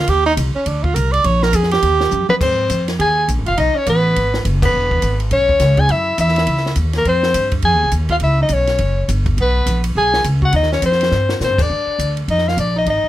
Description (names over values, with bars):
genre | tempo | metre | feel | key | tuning
jazz, small-group swing and bop | 207 BPM | 4/4 | swing 61% on 8ths | unclear | A4 = 440 Hz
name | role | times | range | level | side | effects
clear tenor saxophone | second line | 0.0-13.1 s | Bb3 to D5 | -21 LUFS | right 3 dB | none
upright bass | bass | 0.0-13.1 s | E1 to Bb2 | -18 LUFS | equal | none
compact cocktail drum kit | drums | 0.1-12.9 s | crash cymbal, hi-hat, kick drum, ride cymbal, snare drum, toms | -24 LUFS | equal | none
bright soprano saxophone | melody | 2.3-13.1 s | Bb4 to Ab5 | -17 LUFS | left 2 dB | none
room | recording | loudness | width
light reverb | none | -14 LUFS | side -14 dB against mid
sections
0.0-2.4 A section; 2.4-11.7 B section; 11.7-13.1 C section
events
tenor saxophone solo 0.0-2.4; drum fill 2.1, 11.1; band accent 4.6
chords
0.1 Cmadd9; 1.3 Bb5; 1.8 Eb; 2.4 Ab6; 3.6 B5; 4.7 E6; 5.9 Gb5; 7.1 Fm9; 8.2 Badd9; 8.8 Gb5; 9.4 Bsus2; 10.5 Eb69; 11.7 Bbadd11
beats
| 0.09 0.38 0.67 0.96 | 1.25 1.54 1.83 2.12 | 2.41 2.70 2.99 3.28 | 3.57 3.86 4.16 4.45 | 4.74 5.03 5.32 5.61 | 5.90 6.19 6.48 6.77 | 7.06 7.35 7.64 7.93 | 8.22 8.51 8.80 9.09 | 9.38 9.67 9.96 10.25 | 10.54 10.83 11.12 11.41 | 11.70 11.99 12.28 12.57 | 12.86